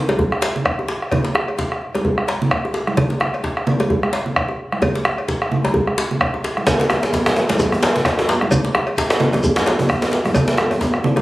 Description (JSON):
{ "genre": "west african traditional, West African drum ensemble", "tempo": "130 BPM", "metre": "4/4", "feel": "swing 56% on 16ths", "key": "none", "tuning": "none", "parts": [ { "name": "congas", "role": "percussion", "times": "0.1-11.2 s", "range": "none", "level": "-22 LUFS", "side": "right 1 dB", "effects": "none" }, { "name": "cowbell", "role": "percussion", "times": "0.1-11.2 s", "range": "none", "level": "-26 LUFS", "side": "left 2 dB", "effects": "none" }, { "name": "djembe", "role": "percussion", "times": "0.1-11.2 s", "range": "none", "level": "-22 LUFS", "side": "left 1 dB", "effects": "none" }, { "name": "bombo", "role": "percussion", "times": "0.2-11.0 s", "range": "none", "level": "-21 LUFS", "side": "equal", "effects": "none" }, { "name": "djembe", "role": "percussion", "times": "6.7-10.9 s", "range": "none", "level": "-18 LUFS", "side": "equal", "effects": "none" }, { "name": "shekere", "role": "percussion", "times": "6.7-10.9 s", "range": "none", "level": "-30 LUFS", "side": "equal", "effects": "none" } ], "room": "moderate studio reverb, RT60 0.5 s", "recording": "recorded on a phone in the room, studio reverb, compression", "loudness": "-16 LUFS", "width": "side -17 dB against mid", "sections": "0.0-6.7 A section; 6.7-11.2 B section", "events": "none", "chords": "none" }